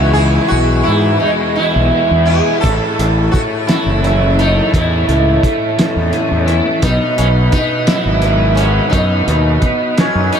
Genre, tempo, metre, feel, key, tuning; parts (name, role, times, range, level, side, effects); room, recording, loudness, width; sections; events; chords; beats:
psychedelic rock; 57 BPM (dotted quarters); 6/8; straight; E major; A4 = 439 Hz
sitar; melody; 0.0-10.4 s; C#4 to A4; -16 LUFS; right 1 dB; tape echo
tonewheel organ; sustained chords; 0.0-10.4 s; G#4 to B5; -24 LUFS; right 2 dB; overdrive, slow rotary speaker
overdriven semi-hollow guitar; riff; 0.0-10.4 s; E2 to F#4; -18 LUFS; left 2 dB; rotary speaker
fuzz fingered electric bass; bass; 0.0-10.3 s; F#1 to G#2; -15 LUFS; equal; overdrive
cloth-damped thuddy drum kit; drums; 2.6-10.4 s; hi-hat, kick drum, snare drum; -18 LUFS; equal
moderate huge ambient reverb, RT60 8.2 s; dreamy mix soaked in reverb; -11 LUFS; side -8 dB against mid
0.0-10.4 A section
0.0 E; 2.6 A; 6.8 B
| 0.53 1.58 | 2.63 3.68 | 4.73 5.78 | 6.83 7.88 | 8.93 9.97